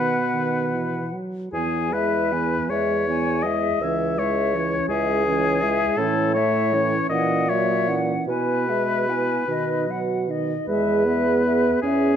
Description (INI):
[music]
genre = classical, slow romantic movement for wind quintet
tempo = 48-56 BPM (dotted quarters)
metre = 6/8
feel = rubato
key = E major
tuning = A4 = 440 Hz
[part]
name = silver concert flute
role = melody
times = 0.0-12.2 s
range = C#5 to G#5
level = -28 LUFS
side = left 8 dB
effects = none
[part]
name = warm oboe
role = second line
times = 0.0-12.2 s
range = G#4 to E5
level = -25 LUFS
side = left 3 dB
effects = none
[part]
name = dark clarinet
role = accompaniment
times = 0.0-12.2 s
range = A#3 to G#4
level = -29 LUFS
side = right 9 dB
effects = none
[part]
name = mellow French horn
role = accompaniment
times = 0.0-12.2 s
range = D#3 to C#4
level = -26 LUFS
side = right 1 dB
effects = none
[part]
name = dark bassoon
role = bass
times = 0.0-12.2 s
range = C#2 to B2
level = -26 LUFS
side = right 3 dB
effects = none
[sound]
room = moderate recital hall reverb, RT60 1.6 s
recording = none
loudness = -20 LUFS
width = side -8 dB against mid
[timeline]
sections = 0.0-10.7 A section; 10.7-12.2 A section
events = none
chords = 0.0 B; 1.5 E; 3.8 C#m; 6.0 A; 7.1 F#7/A#; 8.3 E/B; 9.5 B; 10.7 E